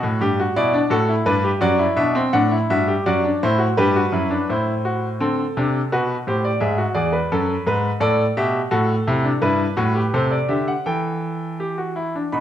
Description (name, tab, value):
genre	classical, baroque-style 3-part fugue for grand piano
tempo	84 BPM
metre	3/4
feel	straight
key	E minor from 8.7 s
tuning	A4 = 440 Hz
part	bright grand piano	solo	0.0-12.4 s	E2 to B5	-18 LUFS	equal	none
room	moderate recital hall reverb, RT60 1.3 s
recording	dark, warm production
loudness	-18 LUFS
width	side -10 dB against mid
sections	0.0-4.5 A section; 4.5-12.4 B section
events	none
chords	0.2 G; 1.6 D/F#; 2.3 D7; 3.8 G; 4.5 D7/A; 5.9 G/B; 6.6 E7; 8.0 A5; 8.7 Am; 10.1 C; 10.9 Em